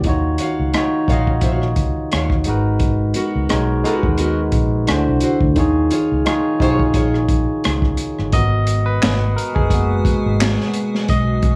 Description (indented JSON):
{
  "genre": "R&B, neo-soul",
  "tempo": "87 BPM",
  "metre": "4/4",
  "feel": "straight",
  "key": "G# dorian",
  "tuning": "A4 = 441 Hz",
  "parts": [
    { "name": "barky tine electric piano", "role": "accompaniment", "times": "0.0-11.6 s", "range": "D3 to D#5", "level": "-22 LUFS", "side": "equal", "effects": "plate reverb" },
    { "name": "vintage muted fingered electric bass", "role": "bass", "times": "0.0-11.6 s", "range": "F#1 to D#2", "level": "-22 LUFS", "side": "equal", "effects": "none" },
    { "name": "crunchy breakbeat drum kit", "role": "drums", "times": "0.0-11.6 s", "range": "handclaps, hi-hat, kick drum, rim click, snare drum", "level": "-23 LUFS", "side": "equal", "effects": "none" },
    { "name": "nylon-string guitar", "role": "second line", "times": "0.4-7.2 s", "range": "B3 to E#5", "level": "-27 LUFS", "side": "equal", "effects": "plate reverb" },
    { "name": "icy glass pad", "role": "sustained chords", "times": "9.0-11.6 s", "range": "B2 to F#4", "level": "-26 LUFS", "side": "equal", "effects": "chorus, built-in reverb, phaser" }
  ],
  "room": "light reverb",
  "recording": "small room reverb",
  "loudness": "-18 LUFS",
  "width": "mono",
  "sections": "0.0-8.3 A section; 8.3-11.6 B section",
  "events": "tine electric piano solo 8.3-11.6",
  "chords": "0.1 D#m9; 2.5 G#m9; 4.9 D9; 5.6 D#9sus4; 8.3 G#m9",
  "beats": "| 0.05 0.74 1.43 2.12 | 2.81 3.50 4.19 4.88 | 5.57 6.26 6.95 7.64 | 8.33 9.02 9.71 10.39 | 11.08"
}